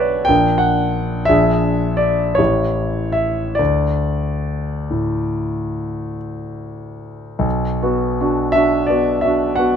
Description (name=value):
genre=classical, romantic nocturne for solo piano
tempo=45-61 BPM (dotted quarters)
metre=9/8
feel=rubato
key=D major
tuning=A4 = 440 Hz
part: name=warm concert grand piano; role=solo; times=0.0-9.8 s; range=A1 to G5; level=-16 LUFS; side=equal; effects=none
room=light reverb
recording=close, detailed microphones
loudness=-16 LUFS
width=side -8 dB against mid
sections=0.0-7.5 A section; 7.5-9.8 B section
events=none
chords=0.3 Bbaug; 1.3 Bb7; 2.4 A7; 3.6 D5; 7.5 Bm